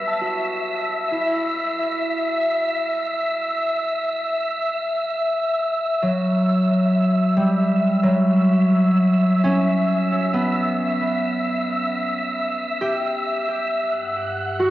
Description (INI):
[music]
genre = ambient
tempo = free time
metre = none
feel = none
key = unclear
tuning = A4 = 440 Hz
[part]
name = concert harp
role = arpeggios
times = 0.0-14.7 s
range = F#3 to A5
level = -20 LUFS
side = equal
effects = cassette tape, analog delay
[part]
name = wind-like tuned noise texture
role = texture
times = 0.0-14.7 s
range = E5 to F#6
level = -22 LUFS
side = equal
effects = built-in reverb, cassette tape
[part]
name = warm sub bass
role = bass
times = 13.8-14.7 s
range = G2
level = -35 LUFS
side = equal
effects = none
[sound]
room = wet spring reverb, RT60 1.5 s, small room reverb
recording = home recording on cassette, nothing above 7.6 kHz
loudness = -19 LUFS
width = side -15 dB against mid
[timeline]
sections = 0.0-13.8 A section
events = fade-in on harp 0.0-13.8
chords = 0.0 Emadd9; 13.8 G